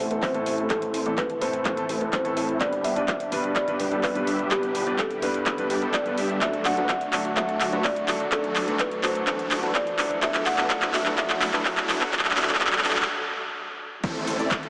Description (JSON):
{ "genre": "EDM, festival progressive house", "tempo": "126 BPM", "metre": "4/4", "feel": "straight", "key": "G major", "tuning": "A4 = 440 Hz", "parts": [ { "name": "kalimba", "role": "melody", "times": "0.0-13.5 s", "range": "G4 to F#5", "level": "-28 LUFS", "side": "equal", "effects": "tape echo" }, { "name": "muted studio string section", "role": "sustained chords", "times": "0.0-14.7 s", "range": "A2 to A4", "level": "-35 LUFS", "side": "equal", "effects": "sidechain pumping, low-pass filter" }, { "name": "supersaw chords", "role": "riff", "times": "0.0-14.6 s", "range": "F#3 to E5", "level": "-30 LUFS", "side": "equal", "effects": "phaser, sidechain pumping, low-pass filter, tape echo" }, { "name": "wide detuned saw bass", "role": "bass", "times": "0.0-14.5 s", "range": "G1 to A2", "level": "-36 LUFS", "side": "equal", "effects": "none" }, { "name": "riser and downlifter", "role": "sound effects", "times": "3.2-14.7 s", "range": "none", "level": "-40 LUFS", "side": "equal", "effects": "none" }, { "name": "warm concert grand piano", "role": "accompaniment", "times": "0.1-12.9 s", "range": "G2 to D5", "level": "-31 LUFS", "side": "equal", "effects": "sidechain pumping" }, { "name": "big-room dance drum kit", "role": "drums", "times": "0.1-14.7 s", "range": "crash cymbal, handclaps, hi-hat, shaker", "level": "-26 LUFS", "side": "equal", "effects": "none" }, { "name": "electronic kick drum", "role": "drums", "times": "0.2-14.6 s", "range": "none", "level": "-32 LUFS", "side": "equal", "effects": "overdrive, high-pass filter on kick, high-pass filter on room" } ], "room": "moderate huge ambient reverb, RT60 4.1 s", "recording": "high-pass filter, small speaker sound", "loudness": "-22 LUFS", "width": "side -36 dB against mid", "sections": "0.0-14.0 A section", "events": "build-up 0.0-14.0; drum fill 0.0-13.1; filter sweep on supersaw synth 0.0-14.0; filter sweep on string section 0.0-14.0; filter sweep 0.0-14.0; break 13.1-14.0", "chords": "0.0 Am; 2.6 G; 6.4 D; 10.2 E5; 14.0 Am" }